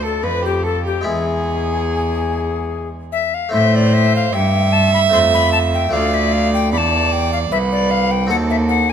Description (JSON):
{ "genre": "classical, baroque-style sonata movement with continuo", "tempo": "75 BPM", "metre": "3/4", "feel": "straight", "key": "A minor", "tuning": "A4 = 438 Hz", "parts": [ { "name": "bright alto recorder", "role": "melody", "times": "0.0-8.9 s", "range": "G4 to C6", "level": "-20 LUFS", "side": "left 8 dB", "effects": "none" }, { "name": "warm violin", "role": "second line", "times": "0.0-8.9 s", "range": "G4 to E5", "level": "-20 LUFS", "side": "right 7 dB", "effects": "none" }, { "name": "harpsichord", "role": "accompaniment", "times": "0.0-8.9 s", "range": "C2 to A4", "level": "-25 LUFS", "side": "left 2 dB", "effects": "none" }, { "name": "rich cello", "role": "bass", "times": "0.0-8.9 s", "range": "C2 to A2", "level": "-18 LUFS", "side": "equal", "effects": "none" } ], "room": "light reverb", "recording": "none", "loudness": "-14 LUFS", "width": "side -8 dB against mid", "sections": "0.0-3.5 A section; 3.5-8.9 B section", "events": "none", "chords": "0.0 Dm; 1.0 E; 3.5 Am; 5.1 F; 5.9 Dm; 8.3 D#dim7" }